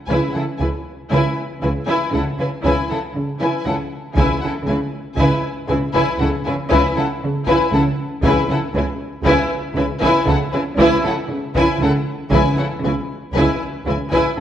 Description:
cinematic, suspense film score; 59 BPM; 4/4; straight; C# minor; A4 = 445 Hz
rich symphonic violin section; melody; 0.1-14.4 s; F#5 to G#5; -29 LUFS; left 3 dB
rich studio violin section; second line; 0.1-14.4 s; A4 to B4; -22 LUFS; left 3 dB
rich symphonic viola section; accompaniment; 0.1-14.4 s; E4; -22 LUFS; right 1 dB
rich symphonic cello section; riff; 0.1-14.2 s; C#3 to C#4; -24 LUFS; right 1 dB
clear symphonic double bass section; bass; 0.1-14.4 s; C#2; -24 LUFS; right 2 dB
warm symphonic cello section; bass; 0.1-14.4 s; C#3; -24 LUFS; right 2 dB
taiko ensemble; drums; 4.2-14.4 s; -26 LUFS; equal
moderate scoring stage reverb, RT60 1.7 s; worn, warbling old tape, cassette tape, warbly pitch drift; -16 LUFS; side -10 dB against mid
0.0-14.4 A section
0.0 C#m7
| 0.09 1.11 2.13 3.15 | 4.16 5.18 6.20 7.21 | 8.23 9.25 10.27 11.30 | 12.32 13.35 14.38

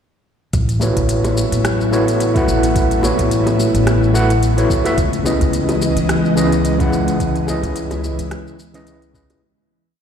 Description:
sunset chillout; 108 BPM; 4/4; swing 56% on 16ths; A lydian; A4 = 442 Hz
ethereal airy pad; sustained chords; 1.0-9.4 s; C#3 to D#5; -21 LUFS; equal; ensemble chorus, built-in reverb
upright bass; bass; 0.5-9.1 s; A1 to C#2; -19 LUFS; equal; tube saturation
electronic kick drum; drums; 0.5-9.3 s; -20 LUFS; equal
smooth R&B drum kit; drums; 0.5-9.4 s; hi-hat, rim click, shaker; -26 LUFS; left 1 dB
overdriven tine electric piano; accompaniment; 0.8-9.4 s; C#3 to F#5; -18 LUFS; equal; medium tremolo, auto-pan, digital delay
bongos; percussion; 0.8-9.4 s; -27 LUFS; equal
moderate plate reverb, RT60 2.3 s; played on a big sound system in a bare room, large studio reverb; -14 LUFS; side -8 dB against mid
0.5-9.4 groove
fade-out 6.5-9.4
0.5 A69; 5.0 C#m9
| 0.53 1.09 1.65 2.20 | 2.76 3.31 3.87 4.42 | 4.98 5.53 6.09 6.64 | 7.20 7.76 8.31 8.87

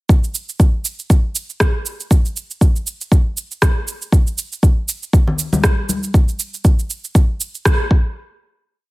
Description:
house; 119 BPM; 4/4; swing 56% on 16ths
electronic kick drum; drums; 0.1-8.0 s; -13 LUFS; equal; small room ambience
electronic shaker and rim click; drums; 0.1-7.8 s; -21 LUFS; right 2 dB; small room ambience
congas; percussion; 5.3-6.0 s; -21 LUFS; left 2 dB
digital ambience; -15 LUFS; side -21 dB against mid
0.1-8.2 groove; 8.2-8.9 final hit
band accent 7.7
| 0.09 0.60 1.10 1.61 | 2.11 2.61 3.12 3.62 | 4.13 4.63 5.13 5.64 | 6.14 6.65 7.15 7.66

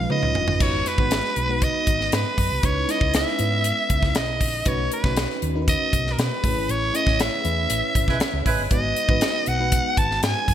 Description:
polished 1980s jazz-funk pop; 118 BPM; 4/4; straight; A4 = 442 Hz
raspy soprano saxophone; melody; 0.0-10.5 s; A#4 to A5; -24 LUFS; right 1 dB
FM electric piano with soft pad layer; accompaniment; 0.0-10.5 s; G#3 to C#5; -28 LUFS; equal; tremolo, analog chorus
hollow-body short-scale fingered electric bass; bass; 0.0-10.5 s; F#1 to B2; -26 LUFS; equal
crisp fusion drum kit; drums; 0.1-10.5 s; crash cymbal, hi-hat, kick drum, snare drum, toms; -24 LUFS; equal
mellow horn section; second line; 8.1-8.6 s; G#3 to B4; -27 LUFS; right 5 dB
light reverb, small room ambience; bright 1980s-style digital production; -19 LUFS; side -10 dB against mid
0.6-10.5 A section
drum fill 0.0-0.6; band accent 6.7-8.7
0.0 C#9; 0.6 G#m7; 2.6 C#m9; 4.7 B9; 6.4 Amaj9; 8.7 G#m7
0.10 | 0.61 1.11 1.62 2.13 | 2.63 3.14 3.65 4.16 | 4.66 5.17 5.67 6.18 | 6.69 7.19 7.70 8.21 | 8.71 9.22 9.72 10.23

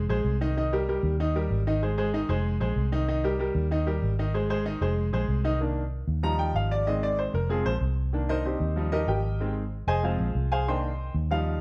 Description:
latin, salsa; 190 BPM; 4/4; straight; C minor; A4 = 440 Hz
bright upright piano; accompaniment; 0.0-11.6 s; Eb3 to C6; -30 LUFS; equal
vintage muted fingered electric bass; bass; 0.0-11.6 s; F1 to Eb2; -30 LUFS; equal
moderate large studio reverb, RT60 1.2 s; dark, warm production; -27 LUFS; mono
0.0-5.6 A section; 5.6-11.6 B section
upright piano solo 5.6-11.6
0.0 Fm (rootless); 0.6 Cm7; 1.2 Eb; 1.8 Ab; 2.5 Fm; 3.1 Cm7; 3.7 Eb; 4.3 Ab; 5.0 Fm; 5.6 Cm7; 6.2 Ebadd9; 6.9 Ab; 7.5 Fm; 8.1 Cm7; 8.8 Ebadd9; 9.4 Ab; 10.0 Fm; 10.7 Cm7
0.25 | 0.56 0.88 1.19 1.51 | 1.82 2.14 2.45 2.77 | 3.08 3.40 3.71 4.03 | 4.34 4.66 4.97 5.29 | 5.61 5.92 6.24 6.55 | 6.87 7.19 7.50 7.82 | 8.14 8.45 8.77 9.09 | 9.40 9.72 10.04 10.36 | 10.67 10.99 11.31

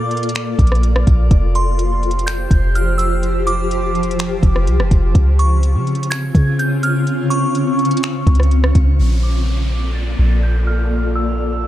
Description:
hip hop, atmospheric cloud-rap; 125 BPM; 4/4; half-time; A4 = 440 Hz
glassy synth bell; melody; 0.0-11.7 s; C6 to A6; -24 LUFS; right 1 dB; chorus, low-pass filter, tape echo
granular cloud pad; sustained chords; 0.0-11.7 s; Db3 to D5; -21 LUFS; equal; built-in reverb, sidechain pumping, low-pass filter
soft 808-style bass; bass; 0.0-11.7 s; F1 to Db3; -16 LUFS; equal
smooth R&B drum kit; drums; 0.1-8.9 s; finger snaps, hi-hat, kick drum, rim click; -17 LUFS; equal; vintage 12-bit sampler grit
downlifter; sound effects; 9.0-11.7 s; -31 LUFS; equal
little or no reverb; -14 LUFS; side -13 dB against mid
0.0-9.0 A section; 9.0-11.7 B section
filter sweep 9.0-11.7
0.0 Bbmaj7; 1.3 Fsus2; 5.2 Dbmaj7; 9.0 Bbmaj7
0.35 0.83 | 1.31 1.79 2.27 2.75 | 3.23 3.71 4.19 4.67 | 5.15 5.63 6.11 6.59 | 7.07 7.55 8.03 8.51 | 8.99 9.47 9.95 10.43 | 10.91 11.39

